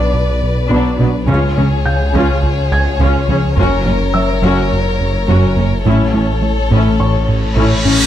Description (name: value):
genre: cinematic, hybrid orchestral and electronic film score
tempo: 105 BPM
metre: 4/4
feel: straight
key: unclear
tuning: A4 = 440 Hz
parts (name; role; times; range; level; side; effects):
- rich chamber violin section; second line; 0.0-7.9 s; G#4 to D5; -20 LUFS; left 4 dB; none
- warm symphonic viola section; accompaniment; 0.0-7.9 s; F#3 to F#4; -20 LUFS; equal; none
- harp-like synth pluck; arpeggios; 0.0-8.0 s; C#3 to E4; -21 LUFS; left 3 dB; chorus, digital delay
- rubbery square bass; riff; 0.0-8.0 s; C#2 to A3; -18 LUFS; right 2 dB; none
- dark detuned saw bass; bass; 0.0-8.1 s; F#1 to C#2; -18 LUFS; equal; none
- felt-muted upright piano; texture; 0.0-8.1 s; C#5 to G#6; -26 LUFS; equal; digital delay
- rich symphonic cello section; bass; 0.7-7.9 s; F#2 to C#3; -21 LUFS; right 2 dB; none
- rich symphonic double bass section; bass; 0.7-7.9 s; F#1 to C#2; -21 LUFS; right 2 dB; none
- taiko ensemble; drums; 3.6-4.7 s; none; -24 LUFS; right 2 dB; none
- reverse cymbal; sound effects; 7.5-8.1 s; none; -18 LUFS; equal; none
room: moderate scoring stage reverb, RT60 2.1 s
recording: none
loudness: -12 LUFS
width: side -11 dB against mid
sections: 0.0-8.1 A section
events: reverse cymbal 7.5-8.1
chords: 0.0 Bm; 1.3 C#; 3.6 F#; 5.9 A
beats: 0.14 0.71 | 1.29 1.86 2.43 3.00 | 3.57 4.14 4.71 5.29 | 5.86 6.43 7.00 7.57